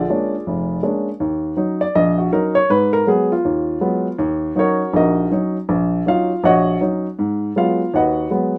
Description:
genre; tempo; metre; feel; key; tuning
solo jazz; 161 BPM; 4/4; swing 63% on 8ths; Eb minor; A4 = 441 Hz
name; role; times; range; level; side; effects
warm upright piano; solo; 0.0-8.6 s; F1 to Gb5; -18 LUFS; equal; none
room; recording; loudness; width
moderate studio reverb, RT60 0.6 s; none; -18 LUFS; mono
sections
0.0-1.2 A section; 1.2-8.6 B section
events
upright piano solo 1.2-8.6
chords
0.0 Bb7#9; 1.2 Ebm7; 2.7 Abm7; 4.2 Ebm7; 7.2 Abm7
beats
0.08 0.45 0.83 | 1.20 1.57 1.95 2.32 | 2.69 3.07 3.44 3.81 | 4.19 4.56 4.93 5.31 | 5.68 6.05 6.43 6.80 | 7.17 7.55 7.92 8.29

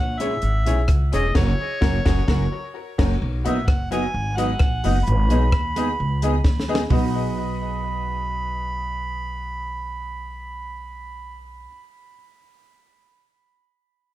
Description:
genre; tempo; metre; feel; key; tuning
ska; 130 BPM; 4/4; straight; B major; A4 = 440 Hz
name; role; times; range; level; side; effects
mellow harmonica; melody; 0.0-11.4 s; C#5 to B5; -29 LUFS; right 2 dB; tape echo
upright bass; bass; 0.0-11.7 s; E1 to D#2; -24 LUFS; equal; none
vintage hollow-body jazz guitar; accompaniment; 0.2-11.7 s; F#3 to G#4; -28 LUFS; right 3 dB; none
tack piano; stabs; 0.2-11.7 s; E4 to D#5; -30 LUFS; left 5 dB; tape echo
compact cocktail drum kit; drums; 0.2-7.0 s; crash cymbal, hi-hat, kick drum, rim click, snare drum, toms; -21 LUFS; equal; none
room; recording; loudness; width
moderate studio reverb, RT60 0.5 s; dark, warm production; -20 LUFS; side -14 dB against mid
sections
0.0-3.2 A section; 3.2-6.9 B section; 6.9-10.6 C section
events
band accent 1.4-3.2; drum fill 6.4-6.9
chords
0.0 C#m; 1.4 F#; 3.2 B; 5.1 G#m; 6.9 B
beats
0.43 0.89 | 1.35 1.82 2.28 2.75 | 3.21 3.67 4.14 4.60 | 5.06 5.52 5.99 6.45 | 6.91 7.37 7.84 8.30 | 8.76 9.22 9.68 10.15

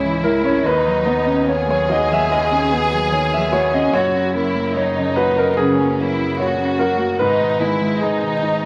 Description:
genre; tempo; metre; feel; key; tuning
neoclassical piano and strings; 73 BPM; 4/4; rubato; B major; A4 = 440 Hz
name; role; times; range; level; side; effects
rich chamber violin section; melody; 0.0-8.7 s; C#4 to G#4; -24 LUFS; equal; none
rich cello; second line; 0.0-8.7 s; G#2 to C#4; -27 LUFS; equal; none
clear concert grand piano; accompaniment; 0.0-8.7 s; D#2 to E5; -20 LUFS; equal; none
clear double bass; bass; 0.0-8.7 s; F#1 to D#2; -30 LUFS; equal; none
room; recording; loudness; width
moderate club reverb, RT60 0.6 s; vinyl crackle; -18 LUFS; mono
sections
0.0-8.7 A section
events
none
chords
0.0 C#m; 0.6 Badd9/D#; 3.9 F#; 7.2 G#m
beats
| 0.64 1.48 2.30 3.11 | 3.93 4.75 5.58 6.39 | 7.19 8.01

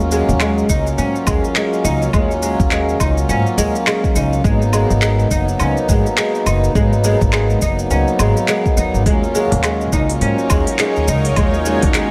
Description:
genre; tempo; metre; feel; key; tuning
organic downtempo; 104 BPM; 4/4; swing 60% on 16ths; G# dorian; A4 = 440 Hz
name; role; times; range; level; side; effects
pedal harmonium; accompaniment; 0.0-12.1 s; F#3 to E#4; -22 LUFS; equal; sidechain pumping, tape echo
upright bass; bass; 0.0-12.1 s; F#1 to G#2; -20 LUFS; equal; sidechain pumping
organic electronic drum kit; drums; 0.0-12.1 s; handclaps, hi-hat, shaker, woodblock; -25 LUFS; equal; none
oud; arpeggios; 0.1-12.1 s; G#3 to D#4; -23 LUFS; equal; tape echo
electronic kick drum; drums; 0.7-11.9 s; none; -21 LUFS; equal; none
bowed-like drone; sustained chords; 10.3-12.1 s; D#4 to C#5; -27 LUFS; equal; built-in reverb, phaser, sidechain pumping
tabla; percussion; 9.5-11.9 s; none; -30 LUFS; equal; none
room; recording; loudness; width
light reverb, small room ambience; none; -16 LUFS; mono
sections
0.0-12.1 A section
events
none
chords
0.0 D#m7; 4.4 G#m7; 9.1 D#m7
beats
0.41 0.98 1.56 | 2.14 2.71 3.29 3.87 | 4.45 5.02 5.60 6.17 | 6.75 7.33 7.91 8.48 | 9.06 9.64 10.21 10.79 | 11.37 11.95

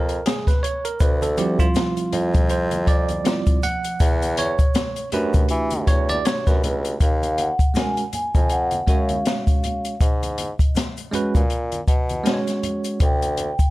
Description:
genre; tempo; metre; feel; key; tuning
hip hop, jazz-hop; 80 BPM; 4/4; swing 58% on 16ths; unclear; A4 = 440 Hz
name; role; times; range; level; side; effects
bell-like tine electric piano; accompaniment; 0.0-13.0 s; F3 to Gb5; -24 LUFS; right 3 dB; fast stereo tremolo
clear bassoon; bass; 0.0-13.5 s; Db2 to E3; -24 LUFS; equal; none
open jazz drum kit; drums; 0.1-13.7 s; hi-hat, kick drum, snare drum; -20 LUFS; equal; none
egg shaker and congas; percussion; 1.0-13.7 s; none; -35 LUFS; left 1 dB; none
vibraphone with soft mallets; melody; 7.0-13.7 s; Eb5 to Ab5; -26 LUFS; equal; analog delay
room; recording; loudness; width
studio reverb; dark, warm production; -18 LUFS; side -18 dB against mid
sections
0.0-7.0 A section; 7.0-13.7 B section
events
tine electric piano solo 0.0-7.0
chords
0.0 Abmadd9; 1.0 Dm11; 4.0 Em11; 7.0 Ebm11; 10.0 Abm11; 13.0 Dsus4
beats
0.25 | 1.00 1.75 2.50 3.25 | 4.00 4.75 5.50 6.25 | 7.00 7.75 8.50 9.25 | 10.00 10.75 11.50 12.25 | 13.00

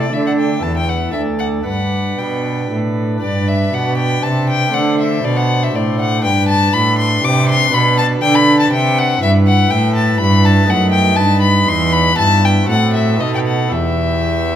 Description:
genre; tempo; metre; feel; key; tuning
classical, baroque-style sonata movement with continuo; 120 BPM; 3/4; straight; G major, E minor from 9.2 s; A4 = 442 Hz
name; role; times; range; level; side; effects
rich violin; melody; 0.0-14.6 s; D5 to D6; -17 LUFS; left 4 dB; none
pipe organ, sparkling flutes; accompaniment; 0.0-14.6 s; D2 to C5; -19 LUFS; right 1 dB; none
rich cello; bass; 0.0-14.6 s; D2 to D3; -16 LUFS; right 1 dB; none
room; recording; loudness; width
wet recital hall reverb, RT60 1.7 s; minimal, uncompressed stereo recording; -12 LUFS; side -10 dB against mid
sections
0.0-3.2 A section; 3.2-14.6 B section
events
none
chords
0.1 D5; 0.6 E5; 1.1 D5; 1.7 G; 4.7 D5; 6.2 G; 7.7 Am11/B (rootless); 9.2 Em/G; 10.7 B7/F#; 12.2 Em/G; 12.7 F#dim/A; 13.2 B7; 13.7 Em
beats
| 0.12 0.62 1.14 | 1.66 2.18 2.71 | 3.23 3.73 4.24 | 4.74 5.25 5.75 | 6.25 6.74 7.24 | 7.73 8.23 8.72 | 9.22 9.71 10.20 | 10.69 11.18 11.68 | 12.18 12.68 13.19 | 13.72 14.25

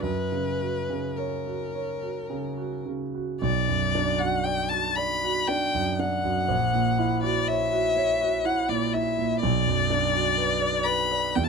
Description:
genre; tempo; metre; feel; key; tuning
classical, romantic duo for violin and grand piano; 52-64 BPM; 3/4; rubato; B minor; A4 = 440 Hz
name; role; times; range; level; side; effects
warm violin; melody; 0.0-11.5 s; A#4 to B5; -26 LUFS; left 4 dB; none
warm concert grand piano; accompaniment; 0.0-11.5 s; A#1 to D5; -26 LUFS; right 3 dB; none
room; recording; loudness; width
little or no reverb; close, detailed microphones; -23 LUFS; side -5 dB against mid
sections
0.0-3.4 A section; 3.4-11.5 A section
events
none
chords
0.0 F#; 3.4 Bm; 6.5 F#7/A#; 9.4 Bm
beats
| 0.03 1.18 2.29 | 3.41 4.45 5.48 | 6.49 7.48 8.45 | 9.41 10.36 11.36

